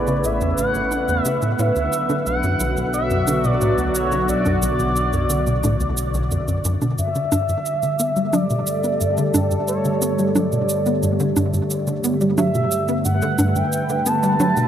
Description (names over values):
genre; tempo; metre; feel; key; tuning
ambient, sequencer-driven space music; 89 BPM; 4/4; straight; G major from 7.0 s; A4 = 442 Hz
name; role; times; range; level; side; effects
expressive synth lead; melody; 0.0-14.7 s; C#5 to A5; -23 LUFS; right 1 dB; wide subtle chorus, analog delay
sweeping resonant pad; sustained chords; 0.0-14.7 s; C#3 to B4; -23 LUFS; equal; chorus
analog drone; bass; 0.0-14.7 s; A1 to G2; -29 LUFS; equal; chorus
tight sequencer bass; riff; 0.1-14.7 s; A1 to B3; -22 LUFS; equal; ensemble chorus, analog delay
shaker and bongos; percussion; 0.1-14.7 s; none; -25 LUFS; right 2 dB; analog delay
pulsing gated texture; texture; 11.0-14.7 s; E5; -44 LUFS; right 4 dB; none
room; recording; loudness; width
wet huge ambient reverb, RT60 8.5 s; none; -18 LUFS; side -10 dB against mid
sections
0.0-7.0 A section; 7.0-14.7 B section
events
fade-in on synth drone 7.0-14.7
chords
0.0 Aadd9; 1.6 Bm; 7.0 Gsus2